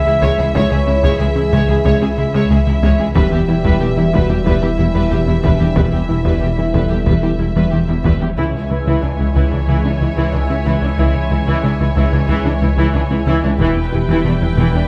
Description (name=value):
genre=cinematic, hybrid orchestral and electronic film score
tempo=92 BPM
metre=4/4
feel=straight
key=unclear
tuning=A4 = 440 Hz
part: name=warm symphonic violin section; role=melody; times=0.0-8.1 s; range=E5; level=-28 LUFS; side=equal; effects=none
part: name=dark French horn section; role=sustained chords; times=0.0-13.8 s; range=E3 to E5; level=-25 LUFS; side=equal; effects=none
part: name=phased analog pad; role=sustained chords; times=0.0-14.9 s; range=E3 to E5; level=-27 LUFS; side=equal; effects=phaser, chorus
part: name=detuned saw bass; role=bass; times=0.0-14.9 s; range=E1 to C#2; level=-23 LUFS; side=equal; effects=none
part: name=felt-muted upright piano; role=texture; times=0.0-14.9 s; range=G4 to B4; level=-34 LUFS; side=equal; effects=none
part: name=rich symphonic violin section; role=second line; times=0.1-14.9 s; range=E4 to G#5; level=-30 LUFS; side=equal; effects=none
part: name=rich symphonic viola section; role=accompaniment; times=0.1-14.8 s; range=E3 to E4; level=-25 LUFS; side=equal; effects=none
part: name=plucky analog bass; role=riff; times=0.1-14.8 s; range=C#2 to E3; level=-22 LUFS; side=equal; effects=none
part: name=rich symphonic cello section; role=bass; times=0.1-14.8 s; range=C#2 to E2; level=-25 LUFS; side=equal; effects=none
part: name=warm symphonic double bass section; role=bass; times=0.2-14.6 s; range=E1 to C#2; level=-24 LUFS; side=equal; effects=none
part: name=taiko ensemble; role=drums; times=0.2-9.7, 13.6-14.9 s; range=none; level=-22 LUFS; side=equal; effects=none
room=light reverb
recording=close, detailed microphones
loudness=-15 LUFS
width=mono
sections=0.0-8.4 A section; 8.4-14.9 B section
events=none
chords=0.0 C#m; 3.2 Em; 8.4 C#m; 13.6 Em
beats=| 0.55 1.20 1.86 2.51 | 3.16 3.81 4.46 5.12 | 5.77 6.42 7.07 7.72 | 8.38 9.03 9.68 10.33 | 10.99 11.64 12.29 12.94 | 13.60 14.25